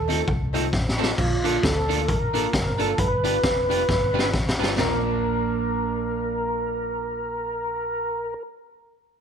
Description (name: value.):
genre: ska.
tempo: 133 BPM.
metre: 4/4.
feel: swing 58% on 8ths.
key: Bb major.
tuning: A4 = 441 Hz.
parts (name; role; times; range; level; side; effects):
mellow tonewheel organ; melody; 0.0-8.3 s; F4 to B4; -26 LUFS; equal; chorus vibrato, slow rotary speaker, slapback echo.
hollow-body short-scale fingered electric bass; bass; 0.0-8.3 s; F1 to Eb2; -30 LUFS; left 1 dB; none.
electric guitar at the edge of break-up; accompaniment; 0.1-8.4 s; Bb3 to B4; -30 LUFS; right 12 dB; none.
tack piano; stabs; 0.1-8.3 s; A3 to Bb4; -32 LUFS; left 13 dB; none.
raw garage drum kit; drums; 0.1-4.9 s; crash cymbal, hi-hat, kick drum, snare drum, toms; -24 LUFS; left 1 dB; none.
room: light reverb, studio reverb.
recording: 1960s-style stereo with parts hard left and right.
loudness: -21 LUFS.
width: side -7 dB against mid.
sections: 0.0-1.2 A section; 1.2-4.8 B section; 4.8-8.4 C section.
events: drum fill 0.7-1.2, 3.9-4.8.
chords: 0.0 F7; 1.2 Bbmaj7; 3.0 G7; 4.8 Bb.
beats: 0.27 0.72 | 1.18 1.63 2.08 2.53 | 2.98 3.43 3.88 4.33 | 4.78 5.23 5.68 6.13 | 6.58 7.03 7.48 7.93.